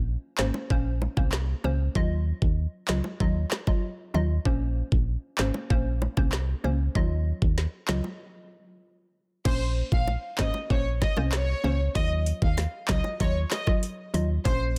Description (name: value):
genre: dancehall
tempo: 96 BPM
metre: 4/4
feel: straight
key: Bb minor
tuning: A4 = 440 Hz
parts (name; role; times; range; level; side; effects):
- hollow square pluck; accompaniment; 0.0-14.8 s; Gb3 to Eb5; -35 LUFS; equal; chorus
- solid FM bass; bass; 0.0-14.8 s; Ab1 to Eb2; -29 LUFS; equal; none
- afro-pop drum kit; drums; 0.4-14.8 s; crash cymbal, handclaps, hi-hat, kick drum, rim click, snare drum; -29 LUFS; equal; overdrive
- bongos; percussion; 0.5-14.3 s; none; -39 LUFS; equal; none
- rich studio violin section; melody; 9.5-14.6 s; C5 to F5; -34 LUFS; equal; digital delay
room: digital ambience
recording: dense, heavily limited modern master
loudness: -27 LUFS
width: mono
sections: 0.0-9.5 A section; 9.5-14.8 B section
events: break 8.2-9.5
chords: 0.0 Bbmadd9; 2.0 Ebmadd9; 4.5 Bbmadd9; 7.0 Ebmadd9; 9.5 Bbmadd9; 12.0 Ebmadd9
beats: 0.08 0.70 1.33 | 1.95 2.58 3.20 3.83 | 4.45 5.08 5.70 6.33 | 6.95 7.58 8.20 8.83 | 9.45 10.08 10.70 11.33 | 11.95 12.58 13.20 13.83 | 14.45